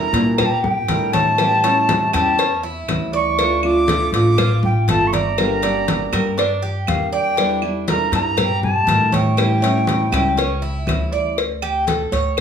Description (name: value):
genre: latin, Cuban son and guajira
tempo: 120 BPM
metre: 4/4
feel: straight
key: unclear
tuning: A4 = 438 Hz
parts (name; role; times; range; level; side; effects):
- silver concert flute; melody; 0.0-10.9 s; F5 to D6; -20 LUFS; left 1 dB; plate reverb
- nylon-string guitar; accompaniment; 0.0-11.4 s; D3 to G4; -22 LUFS; equal; none
- Cuban tres; arpeggios; 0.0-12.4 s; C#4 to D5; -24 LUFS; right 4 dB; none
- upright bass; bass; 0.0-12.4 s; G1 to Bb2; -22 LUFS; equal; none
- cowbell; percussion; 0.1-12.4 s; none; -24 LUFS; left 6 dB; none
- claves; percussion; 0.4-12.4 s; none; -31 LUFS; right 8 dB; none
- congas; percussion; 0.4-12.4 s; none; -24 LUFS; left 2 dB; none
room: moderate studio reverb, RT60 0.7 s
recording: small room reverb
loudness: -15 LUFS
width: side -8 dB against mid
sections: 0.0-11.4 A section; 11.4-12.4 B section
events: Cuban tres solo 11.4-12.4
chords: 0.0 Em7b5; 1.4 A7; 3.4 Dm; 5.4 Gm; 7.4 Em7b5; 9.4 A7; 11.4 Gsus2